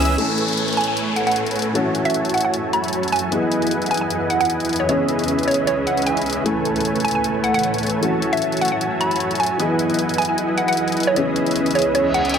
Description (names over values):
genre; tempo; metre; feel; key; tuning
future bass; 153 BPM; 4/4; swing 54% on 16ths, half-time; unclear; A4 = 439 Hz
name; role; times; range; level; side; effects
hollow square pluck; melody; 0.0-12.4 s; C#5 to B5; -22 LUFS; right 2 dB; chorus, digital delay
dark baby grand piano; accompaniment; 0.0-12.4 s; E3 to G#5; -25 LUFS; left 2 dB; digital delay
dense compressed supersaw; riff; 0.0-12.4 s; A3 to A5; -22 LUFS; right 1 dB; low-pass filter
electronic hi-hat; drums; 0.0-12.4 s; none; -28 LUFS; left 5 dB; none
shimmering ambient pad; sustained chords; 1.1-12.4 s; C#2 to G#5; -28 LUFS; equal; chorus, built-in reverb, phaser
downlifter and reverse cymbal; sound effects; 0.2-3.3, 12.1-12.4 s; none; -28 LUFS; left 2 dB; none
room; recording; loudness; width
moderate lush hall reverb, RT60 1.7 s; none; -17 LUFS; side -7 dB against mid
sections
0.2-12.4 A section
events
reverse cymbal 12.1-12.4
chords
0.2 Amaj7; 1.8 F#m7; 3.3 Emaj7; 4.9 C#m7; 6.5 Amaj7; 8.0 F#m7; 9.6 Emaj7; 11.2 C#m7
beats
| 0.18 0.57 0.97 1.36 | 1.75 2.14 2.54 2.93 | 3.32 3.71 4.11 4.50 | 4.89 5.28 5.67 6.07 | 6.46 6.85 7.24 7.63 | 8.03 8.42 8.81 9.20 | 9.60 9.99 10.38 10.77 | 11.16 11.56 11.95 12.34